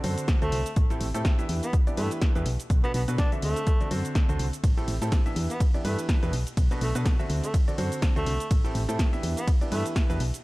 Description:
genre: piano house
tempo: 124 BPM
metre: 4/4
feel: swing 57% on 16ths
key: unclear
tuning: A4 = 440 Hz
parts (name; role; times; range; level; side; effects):
- clear concert grand piano; riff; 0.0-10.2 s; A2 to E5; -32 LUFS; right 1 dB; sidechain pumping
- solid FM bass; bass; 0.0-10.3 s; A1 to B2; -28 LUFS; equal; tube saturation, sidechain pumping
- punchy analog drum machine; drums; 0.0-10.4 s; hi-hat, ride cymbal, shaker, snare drum; -35 LUFS; equal; overdrive, studio reverb
- electronic kick drum; drums; 0.3-10.1 s; none; -23 LUFS; equal; overdrive, studio reverb
- warm tenor saxophone; melody; 0.4-9.9 s; A3 to D4; -35 LUFS; equal; dub echo
room: digital ambience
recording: dark, warm production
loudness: -23 LUFS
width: side -20 dB against mid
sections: 0.0-10.4 A section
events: none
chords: 0.0 D7; 0.8 Am7; 1.5 Em7; 2.5 Bm7; 3.4 D7; 4.6 Am7; 5.4 Em7; 6.3 Bm7; 7.3 D7; 8.5 Am7; 9.2 Em7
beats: 0.28 | 0.77 1.25 1.73 2.22 | 2.70 3.19 3.67 4.15 | 4.64 5.12 5.60 6.09 | 6.57 7.06 7.54 8.02 | 8.51 8.99 9.47 9.96

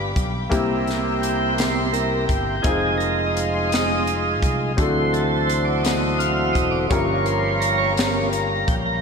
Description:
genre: slow gospel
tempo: 56 BPM (dotted quarters)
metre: 6/8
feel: straight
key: unclear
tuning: A4 = 437 Hz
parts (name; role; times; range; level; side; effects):
- warm upright piano; accompaniment; 0.0-9.0 s; G2 to Bb4; -26 LUFS; left 3 dB; slapback echo
- tonewheel organ; sustained chords; 0.0-9.0 s; E3 to F5; -22 LUFS; right 2 dB; slow rotary speaker
- warm chamber string section; sustained chords; 0.0-9.0 s; Db4 to D6; -31 LUFS; left 2 dB; none
- fingered electric bass; bass; 0.0-9.0 s; E1 to D2; -26 LUFS; equal; none
- crisp fusion drum kit; drums; 0.2-8.8 s; hi-hat, kick drum, snare drum; -25 LUFS; equal; none
room: wet lush hall reverb, RT60 2.7 s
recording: big arena sound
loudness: -18 LUFS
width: side -5 dB against mid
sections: 0.0-9.0 A section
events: tonewheel organ solo 0.0-9.0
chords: 0.0 G7; 0.5 C7; 2.6 Fm7; 4.8 D7; 6.9 Gm7b5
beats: | 0.52 1.58 | 2.65 3.71 | 4.78 5.84 | 6.91 7.97

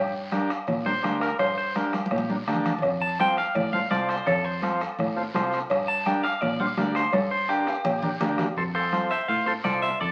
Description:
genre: latin, cumbia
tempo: 167 BPM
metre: 4/4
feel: straight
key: F major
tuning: A4 = 440 Hz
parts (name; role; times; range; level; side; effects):
- clean electric guitar; melody; 0.0-10.1 s; G4 to A5; -29 LUFS; equal; spring reverb
- fingered electric bass; bass; 0.0-10.1 s; C2 to Bb2; -35 LUFS; equal; none
- combo organ; accompaniment; 0.3-9.9 s; C4 to A5; -31 LUFS; equal; none
- bombo; percussion; 0.3-10.1 s; none; -35 LUFS; equal; none
- congas; percussion; 0.3-9.8 s; none; -34 LUFS; equal; none
- guiro; percussion; 0.3-10.1 s; none; -47 LUFS; equal; none
- cowbell and timbales; percussion; 0.7-8.5 s; none; -31 LUFS; equal; none
room: wet studio reverb, RT60 0.6 s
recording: very old 78 rpm record, vinyl crackle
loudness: -25 LUFS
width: mono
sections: 0.0-8.6 A section; 8.6-10.1 B section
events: clean electric guitar solo 0.0-8.6; drum fill 1.9-2.8, 7.1-8.6; transistor combo organ fill 2.3-2.8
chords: 0.0 Gm; 2.8 F; 5.7 Gm; 8.6 F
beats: 0.32 0.68 1.04 | 1.40 1.76 2.12 2.47 | 2.83 3.19 3.55 3.91 | 4.27 4.63 4.99 5.34 | 5.70 6.06 6.42 6.78 | 7.14 7.50 7.85 8.21 | 8.57 8.93 9.29 9.65 | 10.01

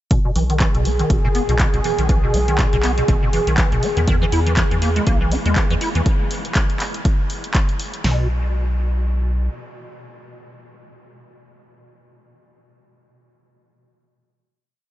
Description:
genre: acid house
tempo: 121 BPM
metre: 4/4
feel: swing 57% on 16ths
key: B major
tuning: A4 = 440 Hz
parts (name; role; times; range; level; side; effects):
- lush unison pad; sustained chords; 0.6-6.1 s; G#4; -26 LUFS; right 1 dB; chorus, sidechain pumping
- acid bass, square; riff; 0.1-8.3 s; A#2 to E4; -24 LUFS; equal; ensemble chorus, sidechain pumping, tape echo
- punchy analog drum machine; drums; 0.1-8.2 s; hi-hat, kick drum, snare drum; -19 LUFS; equal; none
- punchy analog drum machine; drums; 0.1-8.0 s; handclaps, hi-hat; -27 LUFS; equal; none
- round analog bass; bass; 0.4-9.5 s; F#1 to E2; -20 LUFS; equal; sidechain pumping
room: moderate huge ambient reverb, RT60 8.9 s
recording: dreamy mix soaked in reverb, nothing above 7.8 kHz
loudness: -16 LUFS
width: side -14 dB against mid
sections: 0.1-8.0 groove; 8.0-12.0 final note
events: none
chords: 0.1 B; 4.1 E; 8.0 N.C.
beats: | 0.11 0.60 1.10 1.60 | 2.09 2.59 3.08 3.58 | 4.08 4.57 5.07 5.56 | 6.06 6.56 7.05 7.55 | 8.04 8.54 9.04

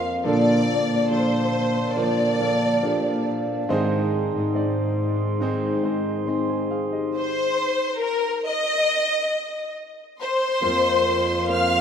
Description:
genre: pop ballad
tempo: 69 BPM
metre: 4/4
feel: straight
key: Bb major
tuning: A4 = 440 Hz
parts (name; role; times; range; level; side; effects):
- rich studio violin section; melody; 0.0-11.8 s; Bb4 to F6; -22 LUFS; left 2 dB; none
- clear baby grand piano; accompaniment; 0.0-11.8 s; Ab2 to C6; -29 LUFS; left 1 dB; none
- glass harmonica; sustained chords; 0.0-11.8 s; Eb4 to C6; -28 LUFS; equal; none
- fingerpicked plugged-in steel-string acoustic guitar; arpeggios; 0.0-11.8 s; Ab2 to Bb4; -28 LUFS; right 3 dB; digital delay
- rich studio cello section; bass; 0.0-11.8 s; F2 to Bb2; -26 LUFS; right 1 dB; none
room: wet plate reverb, RT60 2.6 s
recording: rough home demo mix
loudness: -20 LUFS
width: side -8 dB against mid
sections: 0.0-10.6 A section; 10.6-11.8 B section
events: none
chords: 0.2 Bbmaj7; 3.7 Ab; 7.1 N.C.; 10.6 Fsus4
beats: | 0.25 1.11 1.98 2.83 | 3.69 4.55 5.41 6.28 | 7.14 8.01 8.88 9.75 | 10.63 11.50

